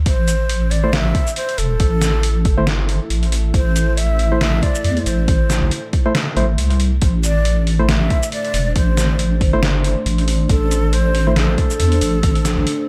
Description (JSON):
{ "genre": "deep dubstep", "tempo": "138 BPM", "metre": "4/4", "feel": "swing 56% on 16ths, half-time", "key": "A minor", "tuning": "A4 = 440 Hz", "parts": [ { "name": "deep soft wobble bass", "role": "bass", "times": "0.0-12.7 s", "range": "E1 to E2", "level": "-19 LUFS", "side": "equal", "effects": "chorus" }, { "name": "breathy ney", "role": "melody", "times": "0.1-12.9 s", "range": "A4 to F5", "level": "-27 LUFS", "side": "equal", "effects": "dub echo" }, { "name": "deep dark ambient pad", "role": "sustained chords", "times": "1.8-12.9 s", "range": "A3 to C5", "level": "-29 LUFS", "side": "equal", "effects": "chorus, built-in reverb" }, { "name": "electronic kick drum", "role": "drums", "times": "0.1-12.3 s", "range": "none", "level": "-20 LUFS", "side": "equal", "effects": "none" }, { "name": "trip hop sampler-style drum kit", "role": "drums", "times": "0.1-12.8 s", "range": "hi-hat, shaker, snare drum", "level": "-25 LUFS", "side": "equal", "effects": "none" }, { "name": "percussive organ stab", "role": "stabs", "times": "0.8-11.3 s", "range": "A3 to C5", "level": "-26 LUFS", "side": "equal", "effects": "chorus, dub echo" } ], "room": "light reverb, digital ambience", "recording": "none", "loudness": "-17 LUFS", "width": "mono", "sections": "0.0-12.9 A section", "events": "none", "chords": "0.0 Am" }